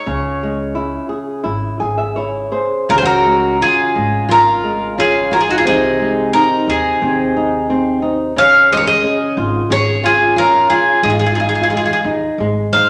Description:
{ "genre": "fado-style ballad", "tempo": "82-92 BPM", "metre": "4/4", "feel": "rubato", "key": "Db major", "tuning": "A4 = 440 Hz", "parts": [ { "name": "bowl-back mandolin", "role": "melody", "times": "0.0-12.9 s", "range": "Gb4 to F5", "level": "-16 LUFS", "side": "equal", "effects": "none" }, { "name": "flamenco guitar", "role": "accompaniment", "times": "0.0-12.9 s", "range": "C3 to G#5", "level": "-21 LUFS", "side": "equal", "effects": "none" }, { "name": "upright bass", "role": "bass", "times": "0.1-12.9 s", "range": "G#1 to Gb2", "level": "-27 LUFS", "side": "equal", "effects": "none" }, { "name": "picked twelve-string acoustic guitar", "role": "second line", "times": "2.9-12.9 s", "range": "Eb4 to Db5", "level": "-23 LUFS", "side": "equal", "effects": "none" } ], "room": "wet large studio reverb, RT60 1.2 s", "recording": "none", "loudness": "-15 LUFS", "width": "mono", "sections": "0.0-2.9 A section; 2.9-12.9 B section", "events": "nylon-string guitar fill 1.4-2.9", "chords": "0.1 C#m; 2.9 Db6; 5.7 Ab/C; 8.4 Db; 11.0 Ab5; 12.4 Ab", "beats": "| 0.07 0.75 1.45 2.17 | 2.88 3.59 4.29 4.97 | 5.66 6.34 7.01 7.69 | 8.36 9.03 9.69 10.35 | 11.02 11.70 12.38" }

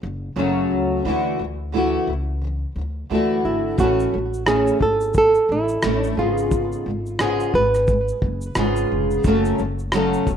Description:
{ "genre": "acoustic pop", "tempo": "88 BPM", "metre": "4/4", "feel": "swing 60% on 16ths", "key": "unclear", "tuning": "A4 = 440 Hz", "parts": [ { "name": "fingerpicked steel-string acoustic guitar", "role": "accompaniment", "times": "0.0-10.4 s", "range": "F#2 to A4", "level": "-21 LUFS", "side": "left 1 dB", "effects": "double-tracked left and right" }, { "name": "upright bass", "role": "bass", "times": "0.0-10.4 s", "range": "E1 to D2", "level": "-26 LUFS", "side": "left 1 dB", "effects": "none" }, { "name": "flamenco guitar", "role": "melody", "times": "3.5-8.9 s", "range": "E4 to B4", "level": "-20 LUFS", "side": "right 2 dB", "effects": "tape echo" }, { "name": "cloth-damped thuddy drum kit", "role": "drums", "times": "3.8-10.4 s", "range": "kick drum, rim click, shaker", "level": "-24 LUFS", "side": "equal", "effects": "none" } ], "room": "moderate digital room reverb, RT60 1.3 s, small room ambience", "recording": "rough home demo mix", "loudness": "-18 LUFS", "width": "side -8 dB against mid", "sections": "0.0-10.4 A section", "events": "none", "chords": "0.0 F#m; 1.1 Dadd9; 3.8 A; 6.2 C#7/G#; 9.2 F#m", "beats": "0.38 | 1.06 1.74 2.42 3.11 | 3.79 4.47 5.15 5.84 | 6.52 7.20 7.88 8.56 | 9.25 9.93" }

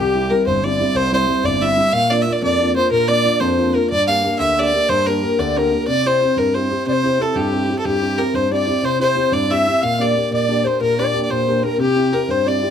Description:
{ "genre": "celtic folk", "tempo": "122 BPM (dotted quarters)", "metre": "12/8", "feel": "straight", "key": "unclear", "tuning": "A4 = 440 Hz", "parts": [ { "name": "rich fiddle", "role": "melody", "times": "0.0-12.7 s", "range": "G4 to F5", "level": "-19 LUFS", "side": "right 2 dB", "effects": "plate reverb" }, { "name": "breathy mellow tenor recorder", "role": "second line", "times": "0.0-12.7 s", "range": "G4 to F5", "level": "-20 LUFS", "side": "left 4 dB", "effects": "none" }, { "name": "dark baby grand piano", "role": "accompaniment", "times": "0.0-12.7 s", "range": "G1 to G4", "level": "-20 LUFS", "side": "equal", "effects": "none" } ], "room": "moderate small room reverb, RT60 0.5 s", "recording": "close, detailed microphones", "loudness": "-15 LUFS", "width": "side -8 dB against mid", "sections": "0.0-12.7 A section", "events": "none", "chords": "0.0 C; 1.9 Bb; 3.9 Gm; 5.9 C; 9.8 Gm/Bb; 11.8 C", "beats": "0.46 0.95 1.44 | 1.93 2.43 2.92 3.41 | 3.90 4.40 4.89 5.38 | 5.88 6.37 6.86 7.36 | 7.85 8.34 8.84 9.33 | 9.82 10.32 10.81 11.30 | 11.80 12.29" }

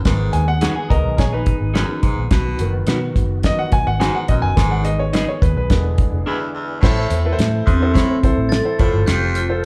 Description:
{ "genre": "uptempo 1960s-style soul", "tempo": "106 BPM", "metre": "4/4", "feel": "straight", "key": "unclear", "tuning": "A4 = 440 Hz", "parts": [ { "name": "clear grand piano", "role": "accompaniment", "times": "0.0-9.7 s", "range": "A2 to G#5", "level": "-26 LUFS", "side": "equal", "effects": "none" }, { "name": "tonewheel organ", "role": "sustained chords", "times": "0.0-9.7 s", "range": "D#3 to A4", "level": "-33 LUFS", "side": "equal", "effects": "slow rotary speaker, overdrive, chorus vibrato" }, { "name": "clear baritone saxophone", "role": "riff", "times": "0.1-9.5 s", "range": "E2 to B2", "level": "-28 LUFS", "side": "equal", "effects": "none" }, { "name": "vintage muted fingered electric bass", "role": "bass", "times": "0.1-9.7 s", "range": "E1 to B2", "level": "-23 LUFS", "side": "equal", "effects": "none" }, { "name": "cloth-damped thuddy drum kit", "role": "drums", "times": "0.1-9.5 s", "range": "crash cymbal, hi-hat, kick drum, snare drum", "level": "-20 LUFS", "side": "equal", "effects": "none" }, { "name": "electric guitar through a small old amp", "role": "riff", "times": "0.6-2.1 s", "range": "D#4 to A#4", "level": "-29 LUFS", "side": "equal", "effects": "none" }, { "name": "electric guitar at the edge of break-up", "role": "stabs", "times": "0.6-6.4 s", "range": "D4 to B4", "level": "-29 LUFS", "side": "equal", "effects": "none" }, { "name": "vibraphone with medium hard mallets", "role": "melody", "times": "7.7-9.7 s", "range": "C4 to A4", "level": "-23 LUFS", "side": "equal", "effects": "none" }, { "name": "glockenspiel with soft plastic mallets", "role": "second line", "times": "7.7-9.7 s", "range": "C6 to A6", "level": "-32 LUFS", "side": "equal", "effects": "none" } ], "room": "moderate large studio reverb, RT60 1.1 s", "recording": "band playing live in one room", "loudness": "-18 LUFS", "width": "mono", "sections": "0.0-6.8 A section; 6.8-9.7 B section", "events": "grand piano solo 0.0-6.8; break 6.3-6.8", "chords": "0.1 G#m; 2.3 B; 4.6 G#m; 5.7 E7; 6.8 Am; 8.8 F", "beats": "| 0.06 0.62 1.19 1.75 | 2.32 2.88 3.45 4.01 | 4.58 5.14 5.70 6.27 | 6.83 7.39 7.96 8.52 | 9.08 9.64" }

